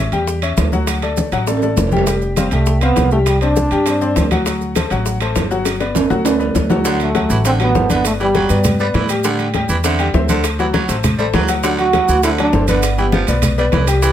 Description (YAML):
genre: latin, salsa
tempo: 201 BPM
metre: 4/4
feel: straight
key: G major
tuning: A4 = 441 Hz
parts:
  - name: clear grand piano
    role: accompaniment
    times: 0.0-14.1 s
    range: F#3 to G5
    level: -20 LUFS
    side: left 4 dB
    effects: none
  - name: upright bass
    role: bass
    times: 0.0-14.1 s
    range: F1 to A2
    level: -18 LUFS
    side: equal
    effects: none
  - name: bongos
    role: percussion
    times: 0.1-14.1 s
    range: none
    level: -25 LUFS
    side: left 6 dB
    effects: none
  - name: congas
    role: percussion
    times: 0.1-14.1 s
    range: none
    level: -22 LUFS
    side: left 1 dB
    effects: none
  - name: maracas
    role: percussion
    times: 0.1-14.1 s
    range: none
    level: -28 LUFS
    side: right 8 dB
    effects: none
  - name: timbales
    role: percussion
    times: 0.1-14.0 s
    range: none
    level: -23 LUFS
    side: right 6 dB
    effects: none
  - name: warm trombone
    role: melody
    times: 2.4-4.3, 7.0-8.8, 11.8-13.2 s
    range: G3 to F#4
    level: -18 LUFS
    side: right 2 dB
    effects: none
  - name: raspy baritone saxophone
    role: second line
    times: 6.9-14.1 s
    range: D3 to G3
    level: -21 LUFS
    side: right 4 dB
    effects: none
room: moderate studio reverb, RT60 0.5 s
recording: none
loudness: -13 LUFS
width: side -10 dB against mid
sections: 0.0-6.9 A section; 6.9-14.1 B section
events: drum fill 1.5-2.1, 5.7-6.9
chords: 0.0 A7 (rootless); 0.9 D; 2.1 Fadd9; 3.3 Csus2; 4.5 D7; 5.7 Gmaj7; 6.9 D7; 8.0 G; 9.2 Am7; 10.4 D7; 12.8 G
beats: 0.27 0.57 | 0.87 1.17 1.47 1.77 | 2.07 2.37 2.67 2.97 | 3.27 3.56 3.86 4.16 | 4.46 4.76 5.06 5.36 | 5.66 5.96 6.25 6.55 | 6.85 7.15 7.45 7.75 | 8.05 8.35 8.64 8.94 | 9.24 9.54 9.84 10.14 | 10.44 10.74 11.04 11.34 | 11.63 11.93 12.23 12.53 | 12.83 13.13 13.43 13.73 | 14.03